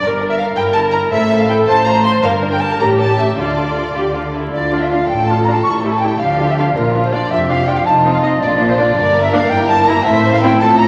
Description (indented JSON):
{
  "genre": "quick classical-period movement for symphony orchestra",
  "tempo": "108 BPM (dotted quarters)",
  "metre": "6/8",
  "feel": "rubato",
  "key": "D minor",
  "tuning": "A4 = 440 Hz",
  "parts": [
    { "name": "rich chamber violin section", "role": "melody", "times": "0.0-10.9 s", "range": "F4 to C6", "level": "-22 LUFS", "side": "equal", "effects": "none" },
    { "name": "clear chamber violin section", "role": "second line", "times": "0.0-10.9 s", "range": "C#4 to C#6", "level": "-26 LUFS", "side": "equal", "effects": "none" },
    { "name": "rich chamber viola section", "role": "accompaniment", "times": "0.0-10.5 s", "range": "Bb3 to C5", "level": "-21 LUFS", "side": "equal", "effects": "none" },
    { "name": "rich chamber cello section", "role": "bass", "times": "0.0-10.9 s", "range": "F2 to D3", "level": "-23 LUFS", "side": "equal", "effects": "none" },
    { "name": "rich chamber double bass section", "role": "bass", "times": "0.0-10.9 s", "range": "F1 to D2", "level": "-26 LUFS", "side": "equal", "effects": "none" },
    { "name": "mellow hollow silver concert flute", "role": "second line", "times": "4.5-10.8 s", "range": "Bb4 to C#6", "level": "-18 LUFS", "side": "equal", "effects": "none" },
    { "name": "mellow French horn section", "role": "sustained chords", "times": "4.5-10.9 s", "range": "F3 to F4", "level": "-22 LUFS", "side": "equal", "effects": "none" }
  ],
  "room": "wet concert hall reverb, RT60 1.8 s",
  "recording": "vinyl crackle",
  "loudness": "-14 LUFS",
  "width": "mono",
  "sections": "0.0-4.5 A section; 4.5-10.9 A section",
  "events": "none",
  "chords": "0.0 Gm; 1.1 Am; 1.7 F/A; 2.2 Gm; 2.8 A; 3.4 Dm; 5.7 A7(no3); 6.2 Dm; 6.8 Bb; 7.9 F7; 8.4 Bb; 9.0 Gm; 9.5 Edim/G; 10.1 Am"
}